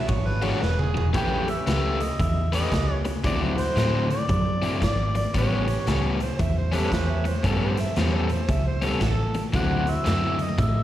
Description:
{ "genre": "electric blues shuffle", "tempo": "114 BPM", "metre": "4/4", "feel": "swing 63% on 8ths", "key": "A mixolydian", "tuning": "A4 = 440 Hz", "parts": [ { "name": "overdriven harmonica", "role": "second line", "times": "0.0-1.1, 6.2-9.4 s", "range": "D4 to E5", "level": "-31 LUFS", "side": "right 4 dB", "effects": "slapback echo, digital delay" }, { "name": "overdriven semi-hollow guitar", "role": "riff", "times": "0.1-10.6 s", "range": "A2 to B4", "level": "-28 LUFS", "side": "left 4 dB", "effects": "slapback echo" }, { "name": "vintage muted fingered electric bass", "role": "bass", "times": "0.1-10.8 s", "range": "E1 to A2", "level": "-25 LUFS", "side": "equal", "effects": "none" }, { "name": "raw garage drum kit", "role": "drums", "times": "0.1-10.7 s", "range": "hi-hat, kick drum, ride cymbal, snare drum, toms", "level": "-28 LUFS", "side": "equal", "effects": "none" }, { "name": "warm horn section", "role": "stabs", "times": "1.1-10.2 s", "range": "C#4 to C5", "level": "-35 LUFS", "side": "right 2 dB", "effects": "slapback echo, digital delay" }, { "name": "overdriven harmonica", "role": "melody", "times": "1.2-6.2, 9.6-10.8 s", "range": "C5 to G5", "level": "-29 LUFS", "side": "equal", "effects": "slapback echo" } ], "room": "light reverb", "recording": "live gig heard through the venue's PA, recital hall reverb", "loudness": "-21 LUFS", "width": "side -13 dB against mid", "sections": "0.0-1.1 A section; 1.1-10.8 B section", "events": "harmonica solo 0.0-1.1; drum fill 0.6-1.1", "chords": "0.0 E9; 1.1 A9; 3.2 D9; 5.3 A9; 9.5 D9" }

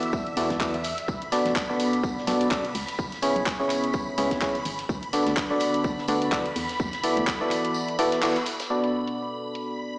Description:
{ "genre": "piano house", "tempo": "126 BPM", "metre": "4/4", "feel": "swing 56% on 16ths", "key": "B dorian", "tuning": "A4 = 439 Hz", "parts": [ { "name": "string machine, violins", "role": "sustained chords", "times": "0.0-10.0 s", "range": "E5 to B5", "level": "-34 LUFS", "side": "equal", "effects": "ensemble chorus, sidechain pumping" }, { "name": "barking FM electric piano", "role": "riff", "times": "0.0-10.0 s", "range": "B2 to D5", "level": "-25 LUFS", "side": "equal", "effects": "chorus, tremolo, cassette tape, sidechain pumping, low-pass filter, dub echo" }, { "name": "house drum kit", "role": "drums", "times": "0.0-9.6 s", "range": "handclaps, hi-hat", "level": "-32 LUFS", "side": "equal", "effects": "low-pass filter on hats, low-pass filter on snare, low-pass filter on room" }, { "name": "electronic kick drum", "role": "drums", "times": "0.1-7.4 s", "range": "none", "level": "-30 LUFS", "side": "equal", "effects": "none" }, { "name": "warm soul drum kit", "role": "drums", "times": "0.1-8.7 s", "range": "hi-hat, snare drum, tambourine", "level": "-38 LUFS", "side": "equal", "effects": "high-pass filter on hats, high-pass filter on snare, high-pass filter on perc, high-pass filter on room" }, { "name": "organ-like FM bass", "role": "bass", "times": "0.4-7.3 s", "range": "G#1 to E2", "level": "-35 LUFS", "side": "equal", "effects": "tube saturation, sidechain pumping" } ], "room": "moderate lush hall reverb, RT60 2.1 s", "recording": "played on a big sound system in a bare room, large studio reverb, small speaker sound", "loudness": "-23 LUFS", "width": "side -24 dB against mid", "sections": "0.0-8.7 A section; 8.7-10.0 B section", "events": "kick drops out 7.8-8.7; band accent 8.2; filter sweep on FM electric piano 8.7-10.0", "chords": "0.0 Bm7; 2.8 C#m7; 4.9 Bm7/D; 8.7 Bm7" }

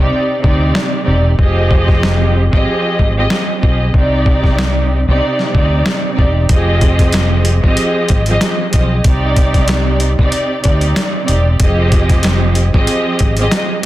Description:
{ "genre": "hip hop, boom-bap hip-hop", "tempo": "94 BPM", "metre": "4/4", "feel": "swing 56% on 16ths", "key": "F dorian", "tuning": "A4 = 440 Hz", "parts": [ { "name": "warm symphonic string section", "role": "accompaniment", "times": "0.0-13.9 s", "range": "C3 to Eb5", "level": "-16 LUFS", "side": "right 1 dB", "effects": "cassette tape, high-pass filter, low-pass filter" }, { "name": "mellow fretless electric bass", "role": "bass", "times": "0.0-13.5 s", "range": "E1 to D2", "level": "-14 LUFS", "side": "equal", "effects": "none" }, { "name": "boom bap sampler-style drum kit", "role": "drums", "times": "0.4-13.9 s", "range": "hi-hat, kick drum, snare drum", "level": "-14 LUFS", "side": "equal", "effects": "none" } ], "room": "little or no reverb", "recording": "dense, heavily limited modern master", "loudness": "-11 LUFS", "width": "side -15 dB against mid", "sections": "0.0-13.9 A section", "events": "break 0.0-6.5", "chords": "0.0 Cmadd9; 1.4 Fm7; 3.9 Cmadd9; 6.5 Fm7; 9.0 Cmadd9; 11.6 Fm7" }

